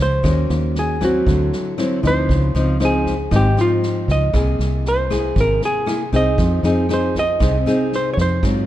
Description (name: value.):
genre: bossa nova.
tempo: 117 BPM.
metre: 4/4.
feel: straight.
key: unclear.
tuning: A4 = 440 Hz.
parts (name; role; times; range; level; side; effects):
hollow-body jazz guitar; melody; 0.0-8.7 s; F4 to Eb5; -21 LUFS; right 1 dB; none.
nylon-string guitar; accompaniment; 0.0-8.7 s; Ab2 to G#4; -21 LUFS; left 1 dB; none.
fingered electric bass; bass; 0.0-8.7 s; Ab1 to Ab2; -19 LUFS; equal; none.
swinging big-band drum kit; drums; 0.2-8.5 s; kick drum, rim click, snare drum; -26 LUFS; equal; none.
room: light reverb.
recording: dark, warm production.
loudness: -15 LUFS.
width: side -13 dB against mid.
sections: 0.0-8.7 A section.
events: none.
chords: 0.2 Ebm7; 1.3 D9; 2.3 Dbmaj9; 4.3 C7alt; 6.4 Fm7.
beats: | 0.24 0.75 1.26 1.78 | 2.29 2.80 3.31 3.82 | 4.33 4.85 5.36 5.87 | 6.38 6.89 7.40 7.92 | 8.43.